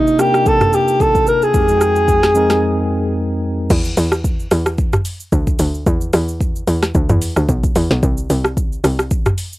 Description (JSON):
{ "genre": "amapiano", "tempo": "111 BPM", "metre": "4/4", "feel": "swing 55% on 16ths", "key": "unclear", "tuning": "A4 = 441 Hz", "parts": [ { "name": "breathy alto saxophone", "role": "melody", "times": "0.0-3.2 s", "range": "Eb4 to Bb4", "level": "-14 LUFS", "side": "equal", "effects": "cassette tape, plate reverb, tape echo" }, { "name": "tine electric piano", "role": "accompaniment", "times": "0.0-3.7 s", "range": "F2 to G5", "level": "-18 LUFS", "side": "equal", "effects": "fast stereo tremolo, cassette tape, plate reverb" }, { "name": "afro-pop drum kit", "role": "drums", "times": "0.1-9.6 s", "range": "crash cymbal, hi-hat, kick drum, rim click, shaker, snare drum, toms", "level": "-17 LUFS", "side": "equal", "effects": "none" }, { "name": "tight log drum bass", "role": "bass", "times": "3.7-9.3 s", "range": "B1 to E2", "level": "-17 LUFS", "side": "equal", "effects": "none" } ], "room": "light reverb", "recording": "home recording on cassette", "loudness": "-13 LUFS", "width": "side -17 dB against mid", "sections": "0.0-3.7 A section; 3.7-9.6 B section", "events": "break 2.6-3.7; drop 3.7-9.6", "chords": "0.0 Cm9; 1.5 Fm9; 3.7 E5; 8.0 N.C." }